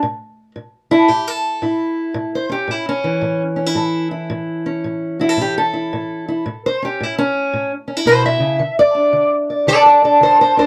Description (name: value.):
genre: acoustic country blues, solo or duo.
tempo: 112 BPM.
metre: 4/4.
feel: swing 65% on 8ths.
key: A mixolydian.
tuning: A4 = 439 Hz.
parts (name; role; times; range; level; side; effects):
fingerpicked steel-string acoustic guitar; solo; 0.0-10.7 s; A2 to E5; -16 LUFS; equal; none.
room: light reverb.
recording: close, detailed microphones.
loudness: -17 LUFS.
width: mono.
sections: 0.0-10.7 A section.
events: steel-string acoustic guitar solo 0.0-10.7.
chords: 0.0 A; 8.6 D5.